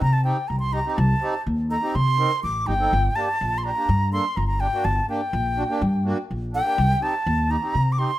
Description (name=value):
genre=klezmer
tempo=124 BPM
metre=4/4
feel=straight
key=G minor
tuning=A4 = 440 Hz
part: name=breathy bright concert flute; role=melody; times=0.0-8.2 s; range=G5 to D6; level=-24 LUFS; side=right 1 dB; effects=plate reverb
part: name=upright bass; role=bass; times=0.0-8.0 s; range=G1 to C3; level=-22 LUFS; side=equal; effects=none
part: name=accordion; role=accompaniment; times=0.2-8.1 s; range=Bb3 to Bb4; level=-30 LUFS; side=right 2 dB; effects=plate reverb
room=moderate studio reverb, RT60 0.6 s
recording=rough home demo mix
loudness=-20 LUFS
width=side -14 dB against mid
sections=0.0-8.2 A section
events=none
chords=0.0 Cm; 2.9 Gm; 6.8 Cm